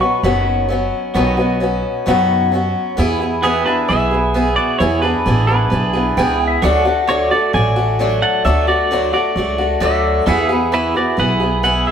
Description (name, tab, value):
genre	country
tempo	132 BPM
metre	4/4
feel	straight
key	E mixolydian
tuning	A4 = 440 Hz
part	pedal steel guitar	second line	0.0-0.5, 6.2-6.9, 9.8-10.5 s	E5 to C#6	-21 LUFS	right 2 dB	none
part	picked swing-style acoustic guitar	accompaniment	0.0-11.9 s	B2 to G#4	-17 LUFS	left 1 dB	none
part	pedal steel guitar	sustained chords	0.0-11.9 s	F#4 to F#5	-26 LUFS	right 1 dB	none
part	upright bass	bass	0.2-11.8 s	F#1 to F#2	-20 LUFS	equal	none
part	clean electric guitar	melody	3.4-11.9 s	B3 to G#5	-18 LUFS	right 2 dB	none
room	wet stone room reverb, RT60 1.2 s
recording	band playing live in one room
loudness	-14 LUFS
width	side -8 dB against mid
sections	0.0-1.2 A section; 1.2-3.0 B section; 3.0-11.9 C section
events	pedal steel guitar solo 0.0-1.2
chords	0.0 Badd9; 3.0 E; 6.6 D; 10.3 E